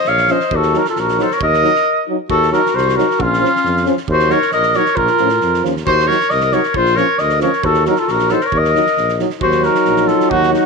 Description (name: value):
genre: balkan folk, Balkan brass band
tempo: 135 BPM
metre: 2/4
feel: straight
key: Eb dorian sharp4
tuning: A4 = 440 Hz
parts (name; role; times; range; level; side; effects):
- mellow trumpet; melody; 0.0-10.7 s; F4 to F5; -16 LUFS; right 4 dB; slapback echo
- bright clarinet; second line; 0.0-10.7 s; Db4 to Db5; -18 LUFS; left 14 dB; none
- loose indie drum kit; percussion; 0.0-10.6 s; kick drum, snare drum; -29 LUFS; right 6 dB; none
- mellow tuba; bass; 0.1-10.6 s; Bb1 to A2; -20 LUFS; right 1 dB; none
- mellow French horn; accompaniment; 0.3-10.7 s; Db4 to Eb4; -22 LUFS; left 14 dB; none
- warm euphonium; accompaniment; 0.3-10.7 s; F3 to Gb3; -22 LUFS; right 14 dB; none
room: light reverb, small room reverb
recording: 1960s-style stereo with parts hard left and right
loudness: -12 LUFS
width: side -4 dB against mid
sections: 0.0-2.3 A section; 2.3-9.4 A section; 9.4-10.7 B section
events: break 1.8-2.3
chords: 0.0 Bbm; 0.5 Ebm; 3.2 Bbm; 4.1 Ebm; 5.0 Bbm; 5.9 Ebm; 6.7 Bbm; 7.6 Ebm